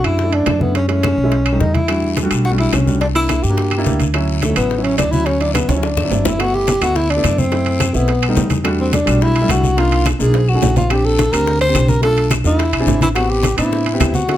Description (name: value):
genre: Afro-Cuban jazz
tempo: 213 BPM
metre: 4/4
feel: straight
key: D major, G major from 6.4 s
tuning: A4 = 440 Hz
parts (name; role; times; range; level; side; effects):
- breathy tenor saxophone; melody; 0.0-14.4 s; A3 to C5; -18 LUFS; left 1 dB; none
- warm upright piano; accompaniment; 0.0-14.4 s; F#3 to G#4; -21 LUFS; right 1 dB; none
- upright bass; bass; 0.0-14.4 s; G1 to A2; -18 LUFS; equal; none
- claves; percussion; 0.0-14.1 s; none; -29 LUFS; left 7 dB; none
- congas; percussion; 0.0-14.4 s; none; -22 LUFS; equal; none
- timbales; percussion; 0.0-14.4 s; none; -25 LUFS; right 8 dB; none
- bongos; percussion; 0.2-14.4 s; none; -26 LUFS; left 8 dB; none
- guiro; percussion; 1.9-14.4 s; none; -30 LUFS; left 7 dB; none
room: light reverb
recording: none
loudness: -13 LUFS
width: side -12 dB against mid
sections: 0.0-6.4 A section; 6.4-14.4 B section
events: drum fill 5.7-6.4, 10.3-10.9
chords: 0.0 Bm11 (rootless); 0.8 F#m9; 1.3 B7b13; 1.9 Em11; 3.0 C9; 4.1 Dmaj9; 5.8 D9; 6.4 G69; 7.5 F#m7b5; 8.1 Baug7; 8.7 Em11; 9.8 Cm11; 10.3 B13; 10.9 Bb69; 12.0 Bm7b5; 12.6 E7b13; 13.2 Am9